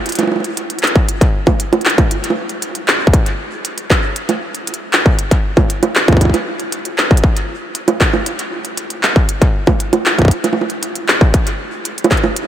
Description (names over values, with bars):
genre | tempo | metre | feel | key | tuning
IDM | 117 BPM | 4/4 | straight | none | none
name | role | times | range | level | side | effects
organic electronic drum kit | drums | 0.1-12.5 s | bongos, handclaps, hi-hat | -16 LUFS | right 2 dB | overdrive, diffuse ambient delay
electronic kick drum | drums | 1.0-12.2 s | none | -12 LUFS | left 1 dB | distortion
room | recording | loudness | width
light reverb | none | -13 LUFS | side -11 dB against mid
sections
0.0-12.5 A section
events
none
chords
none